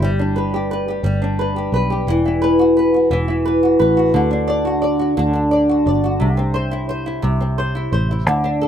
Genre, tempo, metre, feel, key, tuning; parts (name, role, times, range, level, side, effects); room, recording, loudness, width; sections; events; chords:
six-eight pop ballad; 58 BPM (dotted quarters); 6/8; straight; A4 = 440 Hz
flamenco guitar; accompaniment; 0.0-8.7 s; C3 to D5; -16 LUFS; equal; double-tracked left and right, slapback echo
fingered electric bass; bass; 0.0-8.7 s; E1 to D2; -21 LUFS; equal
little or no reverb; recorded outdoors, with no room sound; -15 LUFS; side -9 dB against mid
0.0-8.7 A section
0.0 G; 2.1 Esus2; 4.1 D; 6.2 C